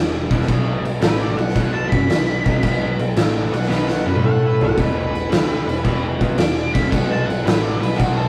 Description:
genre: blues rock power trio and southern rock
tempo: 112 BPM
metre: 4/4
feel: swing 68% on 8ths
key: unclear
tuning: A4 = 440 Hz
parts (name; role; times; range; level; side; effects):
- overdriven tonewheel organ; sustained chords; 0.0-8.3 s; A3 to E5; -38 LUFS; equal; none
- raw garage guitar; riff; 0.0-8.3 s; E2 to A4; -26 LUFS; equal; overdrive
- vintage muted picked electric bass; bass; 0.0-8.3 s; E1 to A2; -29 LUFS; equal; none
- oversized low-tuned drum kit; drums; 0.3-8.2 s; crash cymbal, kick drum, snare drum, toms; -21 LUFS; equal; none
- octave-fuzz lead guitar; melody; 1.0-8.3 s; F#4 to D6; -29 LUFS; equal; distortion
room: moderate studio reverb, RT60 0.5 s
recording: rough rehearsal-room recording, warm saturation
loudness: -19 LUFS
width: mono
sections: 0.0-8.3 A section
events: lead electric guitar solo 0.0-8.3; drum fill 3.7-4.8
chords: 0.5 B7#9; 4.2 A5; 4.8 E7#9; 6.9 B7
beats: | 0.48 1.02 1.56 2.09 | 2.63 3.17 3.70 4.24 | 4.78 5.31 5.85 6.38 | 6.92 7.45 7.99

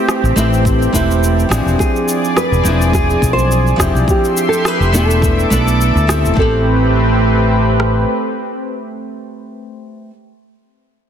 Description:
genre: sunset chillout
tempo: 105 BPM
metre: 4/4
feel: swing 55% on 16ths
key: A minor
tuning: A4 = 440 Hz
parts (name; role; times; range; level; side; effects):
- nylon-string guitar; melody; 0.0-10.1 s; G4 to C5; -20 LUFS; equal; ping-pong delay
- nylon-string guitar; accompaniment; 0.0-10.1 s; F3 to B4; -19 LUFS; moving between left 4 dB and right 4 dB; auto-pan, digital delay
- lush unison pad; sustained chords; 0.0-9.4 s; A3 to D6; -19 LUFS; equal; chorus
- electronic rim click and shaker; drums; 0.1-6.3 s; none; -22 LUFS; equal; soft clipping on snare
- mellow fretless electric bass; bass; 0.2-8.0 s; E1 to D2; -15 LUFS; equal; none
- deep house drum kit; drums; 0.7-7.9 s; kick drum, rim click; -18 LUFS; equal; soft clipping on snare
room: moderate lush hall reverb, RT60 2.0 s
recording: dense, heavily limited modern master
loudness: -11 LUFS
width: side -8 dB against mid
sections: 0.0-6.4 A section; 6.4-8.7 B section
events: none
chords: 0.0 Am9; 1.8 E7b9b13; 4.1 Dm11/F; 5.2 E7sus4; 6.4 Am9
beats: 0.08 0.65 1.22 | 1.80 2.37 2.94 3.51 | 4.08 4.65 5.22 5.80 | 6.37 6.94 7.51 8.08

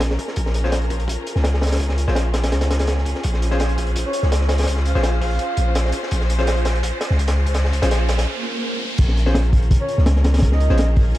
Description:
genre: drum and bass, jungle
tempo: 167 BPM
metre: 4/4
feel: straight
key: Bb minor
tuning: A4 = 439 Hz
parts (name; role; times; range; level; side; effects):
- warm studio string section; sustained chords; 0.0-11.2 s; Db4 to C5; -29 LUFS; left 1 dB; none
- long sustained 808-style bass; bass; 0.0-11.1 s; Bb1 to Db2; -18 LUFS; equal; none
- crunchy breakbeat drum kit; drums; 0.0-11.2 s; crash cymbal, hi-hat, kick drum, snare drum; -22 LUFS; equal; high-pass filter on kick, high-pass filter on hats, high-pass filter on cymbals, high-pass filter on snare, high-pass filter on room
- riser and swell; sound effects; 1.2-9.0 s; none; -32 LUFS; right 1 dB; none
- bright grand piano; stabs; 0.6-10.7 s; Db4 to C5; -28 LUFS; left 1 dB; low-pass filter, dub echo
- breathy flute-like synth lead; melody; 4.1-5.7, 9.8-10.9 s; Db5 to F5; -28 LUFS; right 1 dB; wide subtle chorus, dub echo
room: light reverb, small room ambience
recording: dark, warm production, vinyl crackle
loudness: -17 LUFS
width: side -15 dB against mid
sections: 0.0-9.0 A section; 9.0-11.2 B section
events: build-up 0.0-9.0; riser 1.2-9.0; break 8.3-9.0; swell 8.3-9.0; drop 9.0-11.2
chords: 0.0 Bbm7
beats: 0.01 | 0.37 0.73 1.08 1.45 | 1.80 2.16 2.52 2.88 | 3.24 3.60 3.96 4.32 | 4.68 5.04 5.40 5.76 | 6.12 6.47 6.83 7.19 | 7.55 7.91 8.27 8.63 | 8.99 9.35 9.71 10.07 | 10.43 10.79 11.14

